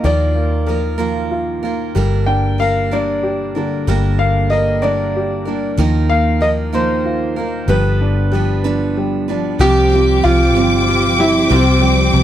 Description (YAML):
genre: pop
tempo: 63 BPM (dotted quarters)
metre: 6/8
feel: straight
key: unclear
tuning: A4 = 436 Hz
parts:
  - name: clear concert grand piano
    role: melody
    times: 0.0-12.2 s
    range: C4 to G5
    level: -18 LUFS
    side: left 1 dB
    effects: none
  - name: clear upright piano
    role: accompaniment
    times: 0.0-12.2 s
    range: C3 to Bb4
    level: -21 LUFS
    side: left 1 dB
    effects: none
  - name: picked steel-string acoustic guitar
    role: arpeggios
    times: 0.0-12.2 s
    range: G2 to B4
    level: -22 LUFS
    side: right 10 dB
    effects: none
  - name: vintage muted fingered electric bass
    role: bass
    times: 0.0-12.2 s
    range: G1 to Eb2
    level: -17 LUFS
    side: left 1 dB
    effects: none
  - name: warm studio violin section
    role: second line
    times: 9.6-12.2 s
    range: D6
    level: -18 LUFS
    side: left 2 dB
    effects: slapback echo
  - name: warm studio string section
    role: sustained chords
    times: 9.6-12.2 s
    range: F3 to G5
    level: -22 LUFS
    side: left 1 dB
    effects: none
room: light reverb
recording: dry, close 1970s-style studio recording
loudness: -13 LUFS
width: side -11 dB against mid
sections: 0.0-9.6 A section; 9.6-12.2 B section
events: none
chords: 0.0 Ebsus2; 2.0 Gm; 5.8 Ebsus2; 7.7 G7; 9.6 Csus4